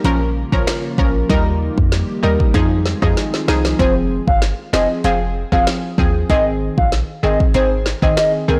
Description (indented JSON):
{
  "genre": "dancehall",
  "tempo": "96 BPM",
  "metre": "4/4",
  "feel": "straight",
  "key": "F minor",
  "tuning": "A4 = 441 Hz",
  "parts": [
    { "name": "analog pluck", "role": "accompaniment", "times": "0.0-8.6 s", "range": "Eb3 to Bb4", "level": "-22 LUFS", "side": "equal", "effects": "chorus" },
    { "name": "glassy FM pad", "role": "sustained chords", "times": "0.0-3.8 s", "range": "Db3 to G4", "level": "-31 LUFS", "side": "equal", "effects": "ensemble chorus, built-in reverb, sidechain pumping" },
    { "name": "short 808-style bass", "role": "bass", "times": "0.0-8.6 s", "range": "F1 to F2", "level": "-22 LUFS", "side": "equal", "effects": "none" },
    { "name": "afro-pop drum kit", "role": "drums", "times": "0.0-8.3 s", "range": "finger snaps, hi-hat, kick drum, rim click, snare drum", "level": "-21 LUFS", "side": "equal", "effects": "soft clipping on snare" },
    { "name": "hollow clarinet-like synth lead", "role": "melody", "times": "3.8-8.6 s", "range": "Bb4 to F5", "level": "-21 LUFS", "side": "equal", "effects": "chorus, tape echo" }
  ],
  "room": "light reverb",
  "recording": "blown-out, overdriven recording, overdrive",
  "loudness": "-17 LUFS",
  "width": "mono",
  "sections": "0.0-3.8 A section; 3.8-8.6 B section",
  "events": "drum fill 3.2-3.8",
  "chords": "0.0 Bbm; 1.3 Eb; 2.5 Fm7; 3.8 Fm; 6.3 Ab"
}